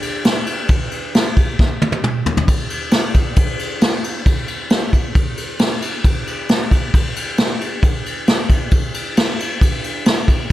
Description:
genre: rock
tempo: 135 BPM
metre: 4/4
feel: straight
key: none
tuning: none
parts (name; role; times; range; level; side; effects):
- vintage brush drum kit; drums; 0.0-10.4 s; kick drum, ride cymbal, snare drum, toms; -15 LUFS; equal; none
room: little or no reverb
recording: none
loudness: -15 LUFS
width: side -14 dB against mid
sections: 0.0-10.5 A section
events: drum fill 1.6-2.5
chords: none

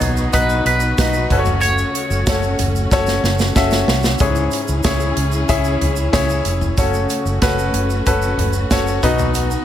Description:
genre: piano-driven pop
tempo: 93 BPM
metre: 4/4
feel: straight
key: C# minor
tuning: A4 = 440 Hz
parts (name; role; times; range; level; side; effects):
- twangy electric guitar; melody; 0.0-3.5 s; A4 to C#5; -22 LUFS; equal; ping-pong delay
- bright concert grand piano; accompaniment; 0.0-9.6 s; G#2 to E5; -20 LUFS; left 2 dB; none
- warm studio string section; sustained chords; 0.0-9.6 s; C#3 to G#4; -26 LUFS; equal; none
- vintage muted fingered electric bass; bass; 0.0-9.6 s; E#1 to C#2; -20 LUFS; equal; none
- natural country drum kit; drums; 0.0-9.5 s; hi-hat, kick drum, snare drum, toms; -20 LUFS; right 1 dB; none
- tube shaker; percussion; 0.0-9.6 s; none; -33 LUFS; right 9 dB; none
room: light reverb, small room ambience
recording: none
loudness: -15 LUFS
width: side -11 dB against mid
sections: 0.0-4.2 A section; 4.2-9.6 B section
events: drum fill 2.9-4.2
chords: 0.0 B; 1.3 F#m; 4.2 C#m; 6.8 F#m; 9.0 B

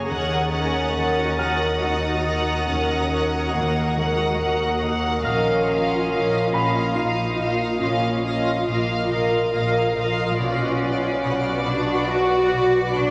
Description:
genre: cinematic, suspense film score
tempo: 70 BPM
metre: 3/4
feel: straight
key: Eb minor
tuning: A4 = 440 Hz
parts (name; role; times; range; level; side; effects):
- twinkling granular texture; sustained chords; 0.0-13.1 s; F4 to D6; -29 LUFS; equal; built-in reverb
- concert harp; riff; 0.0-13.1 s; F#2 to Eb4; -33 LUFS; equal; none
- rich symphonic cello section; bass; 0.0-13.1 s; Ab3 to F#4; -28 LUFS; equal; none
- pure sine sub bass; drone; 0.0-13.1 s; Bb1 to Eb2; -36 LUFS; equal; none
- bright grand piano; texture; 0.0-10.4 s; Gb5 to F6; -34 LUFS; equal; none
- clear studio violin section; melody; 0.1-13.1 s; D5 to Gb5; -31 LUFS; equal; none
- warm symphonic violin section; second line; 0.1-13.1 s; B4 to Gb5; -35 LUFS; equal; none
- dark studio viola section; accompaniment; 0.1-13.1 s; Bb3 to Bb4; -29 LUFS; equal; none
- dark symphonic double bass section; bass; 0.1-13.1 s; Bb1 to Eb2; -33 LUFS; equal; none
- warm symphonic violin section; texture; 0.1-4.8 s; Eb6 to A6; -35 LUFS; equal; none
room: wet scoring stage reverb, RT60 1.7 s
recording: none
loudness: -22 LUFS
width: mono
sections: 0.1-13.1 A section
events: none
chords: 0.1 Ebm7; 5.2 Bbsus4; 10.4 Bmadd9

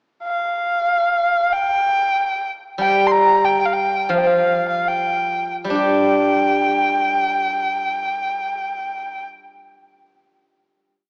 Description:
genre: chinese traditional, Chinese chamber ensemble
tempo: 64-94 BPM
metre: 2/4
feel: rubato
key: unclear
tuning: A4 = 440 Hz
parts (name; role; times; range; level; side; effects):
- rich erhu; melody; 0.2-9.2 s; F5 to C6; -20 LUFS; equal; none
- steel-string zither; accompaniment; 2.8-11.1 s; F3 to G4; -22 LUFS; equal; none
room: wet concert hall reverb, RT60 2.1 s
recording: worn, warbling old tape, cassette tape, warbly pitch drift, small speaker sound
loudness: -19 LUFS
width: mono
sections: 0.2-5.8 A section; 5.8-9.4 final chord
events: slowing down 2.8-5.8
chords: none

